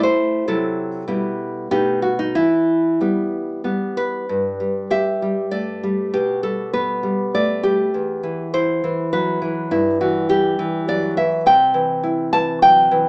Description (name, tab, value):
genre	romantic piece for solo classical guitar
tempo	91-105 BPM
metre	3/4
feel	rubato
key	E minor, G major from 4.3 s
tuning	A4 = 439 Hz
part	nylon-string guitar	solo	0.0-13.1 s	E2 to A5	-16 LUFS	equal	none
room	light reverb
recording	band playing live in one room, small speaker sound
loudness	-17 LUFS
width	side -29 dB against mid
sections	0.0-4.3 A section; 4.3-13.1 B section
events	none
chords	0.5 F#m7b5/C; 1.1 Em/B; 1.7 B7; 2.4 Em; 4.3 G; 6.1 G/B; 7.9 Em; 9.7 Em/G; 11.5 C